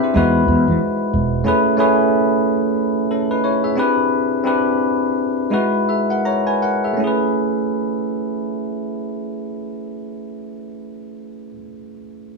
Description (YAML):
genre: R&B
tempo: 78-92 BPM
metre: 4/4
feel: swing 60% on 16ths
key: A lydian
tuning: A4 = 442 Hz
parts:
  - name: bell-like tine electric piano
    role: accompaniment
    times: 0.0-12.4 s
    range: G#3 to Bb5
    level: -18 LUFS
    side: equal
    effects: none
  - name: mellow fretless electric bass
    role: bass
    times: 0.2-1.4 s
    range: E1 to E3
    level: -18 LUFS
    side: equal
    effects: none
room: moderate studio reverb, RT60 0.9 s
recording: band playing live in one room, studio reverb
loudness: -16 LUFS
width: side -2 dB against mid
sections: 0.0-7.0 A section; 7.0-10.1 B section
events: slowing down 1.4-7.0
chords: 0.1 Emaj9; 1.4 Amaj9; 3.8 Cmaj9; 5.5 Emaj9; 7.0 Amaj9